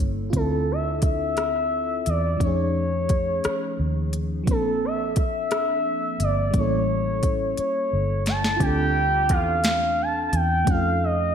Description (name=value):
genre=slow six-eight R&B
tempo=58 BPM (dotted quarters)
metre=6/8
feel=straight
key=D minor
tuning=A4 = 436 Hz
part: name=FM electric piano with soft pad layer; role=accompaniment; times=0.0-11.3 s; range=F3 to A4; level=-29 LUFS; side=equal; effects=chorus, slapback echo
part: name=vintage muted fingered electric bass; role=bass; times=0.0-11.3 s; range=G1 to F2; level=-26 LUFS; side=equal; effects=none
part: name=smooth R&B drum kit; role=drums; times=0.3-10.8 s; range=hi-hat, kick drum, rim click, snare drum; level=-25 LUFS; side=equal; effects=overdrive
part: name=gliding portamento lead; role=melody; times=0.4-11.3 s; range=A4 to A5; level=-24 LUFS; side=left 1 dB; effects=chorus, slapback echo
part: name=warm horn section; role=stabs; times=8.6-9.6 s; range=D3 to G4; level=-32 LUFS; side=left 2 dB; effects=slapback echo, tape echo
room=wet scoring stage reverb, RT60 1.6 s, digital ambience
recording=big arena sound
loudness=-21 LUFS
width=side -8 dB against mid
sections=0.0-8.6 A section; 8.6-11.3 B section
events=drum fill 7.6-8.6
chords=0.3 Dm9; 2.4 F7alt; 4.5 Bbmaj9; 6.5 A7b9; 8.6 Dm9; 10.7 F7b13